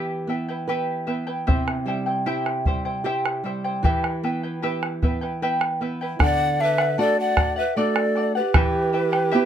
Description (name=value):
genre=andean folk, Andean ensemble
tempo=76 BPM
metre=3/4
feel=straight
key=E minor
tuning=A4 = 440 Hz
part: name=charango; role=accompaniment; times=0.0-9.5 s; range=E4 to G5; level=-26 LUFS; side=left 1 dB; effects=none
part: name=nylon-string guitar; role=accompaniment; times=0.0-9.5 s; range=C3 to B4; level=-27 LUFS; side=right 2 dB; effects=none
part: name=bombo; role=percussion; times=1.5-9.3 s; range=none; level=-21 LUFS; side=equal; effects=none
part: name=mellow large quena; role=melody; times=6.2-9.5 s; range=B4 to F#5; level=-23 LUFS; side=left 1 dB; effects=none
part: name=breathy hollow large pan pipes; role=second line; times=6.2-9.5 s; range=G4 to D5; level=-26 LUFS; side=right 6 dB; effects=none
room=light reverb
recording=close, detailed microphones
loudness=-20 LUFS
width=side -9 dB against mid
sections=0.0-6.2 A section; 6.2-9.5 B section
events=none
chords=0.0 Em; 1.5 C; 3.8 Em; 6.2 D; 8.6 Em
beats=0.69 | 1.48 2.27 3.06 | 3.84 4.63 5.42 | 6.20 6.99 7.77 | 8.56 9.34